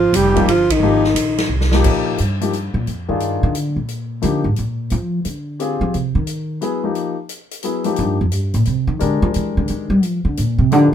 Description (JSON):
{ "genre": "modal jazz", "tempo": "176 BPM", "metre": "3/4", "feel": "swing 65% on 8ths", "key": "unclear", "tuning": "A4 = 440 Hz", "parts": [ { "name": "warm alto saxophone", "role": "melody", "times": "0.0-1.5 s", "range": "Eb4 to G4", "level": "-16 LUFS", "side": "equal", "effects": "none" }, { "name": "mellow bass clarinet", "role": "second line", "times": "0.0-1.5 s", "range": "Eb3 to G3", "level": "-22 LUFS", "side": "right 4 dB", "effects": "none" }, { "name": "upright bass", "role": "bass", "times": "0.0-10.9 s", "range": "F1 to G3", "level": "-18 LUFS", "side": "equal", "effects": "none" }, { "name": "swinging big-band drum kit", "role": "drums", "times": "0.1-10.8 s", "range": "crash cymbal, hi-hat, kick drum, ride cymbal, snare drum", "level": "-26 LUFS", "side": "equal", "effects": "none" }, { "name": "warm concert grand piano", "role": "accompaniment", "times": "0.3-10.9 s", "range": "Eb3 to Bb4", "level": "-20 LUFS", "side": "left 4 dB", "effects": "none" } ], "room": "light reverb", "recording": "minimal, uncompressed stereo recording", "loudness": "-16 LUFS", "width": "side -9 dB against mid", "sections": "0.0-1.8 A section; 1.8-10.9 B section", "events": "band accent 0.6; drum fill 1.5-1.8; upright bass solo 1.8-10.9", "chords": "0.0 Abmaj7sus2; 10.0 Ebmaj9" }